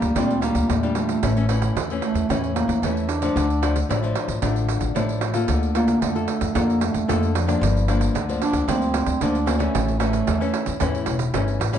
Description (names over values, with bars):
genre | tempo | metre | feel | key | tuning
samba and choro | 113 BPM | 4/4 | straight | unclear | A4 = 439 Hz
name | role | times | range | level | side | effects
mellow bass clarinet | second line | 0.0-10.8 s | F3 to D4 | -24 LUFS | right 3 dB | none
nylon-string guitar | accompaniment | 0.0-11.8 s | G2 to A4 | -25 LUFS | left 5 dB | none
upright bass | bass | 0.0-11.8 s | E1 to F2 | -24 LUFS | equal | none
pandeiro | percussion | 0.0-11.8 s | none | -27 LUFS | right 8 dB | none
room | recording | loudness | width
moderate large studio reverb, RT60 1.1 s | dark, warm production, nothing above 10.4 kHz | -19 LUFS | side -9 dB against mid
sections
0.0-11.8 A section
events
bass clarinet solo 0.0-11.8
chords
0.0 Gm7; 1.2 A; 3.4 Dm; 5.5 Bbmaj7/D; 7.6 Gm7; 9.8 A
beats
0.16 0.69 | 1.23 1.76 2.29 2.83 | 3.36 3.89 4.43 4.96 | 5.49 6.02 6.56 7.09 | 7.62 8.15 8.69 9.22 | 9.75 10.28 10.81 11.35